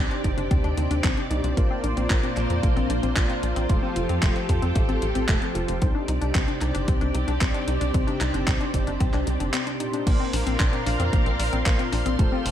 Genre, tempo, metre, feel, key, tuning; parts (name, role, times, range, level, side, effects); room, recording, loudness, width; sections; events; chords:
italo disco; 113 BPM; 4/4; straight; A4 = 439 Hz
string machine, full ensemble; sustained chords; 0.0-12.5 s; Bb3 to C6; -30 LUFS; equal; ensemble chorus
analog pluck; arpeggios; 0.0-12.5 s; A3 to F4; -31 LUFS; left 6 dB; chorus, tape echo
mellow synth brass; stabs; 0.0-12.5 s; Bb2 to C5; -31 LUFS; right 1 dB; chorus, tape echo
tight sequencer bass; bass; 0.0-12.5 s; F1 to F2; -26 LUFS; equal
gated 80s digital drum machine; drums; 0.1-12.5 s; crash cymbal, handclaps, hi-hat; -31 LUFS; equal; gated reverb, studio reverb
electronic kick drum; drums; 0.2-12.3 s; -23 LUFS; equal; studio reverb
light reverb, digital ambience; -21 LUFS; side -10 dB against mid
0.0-10.1 A section; 10.1-12.5 B section
break 9.5-10.1
0.0 Cmadd9; 1.6 Bbadd9; 3.7 Fadd9; 5.8 Cmadd9; 10.1 Bbadd9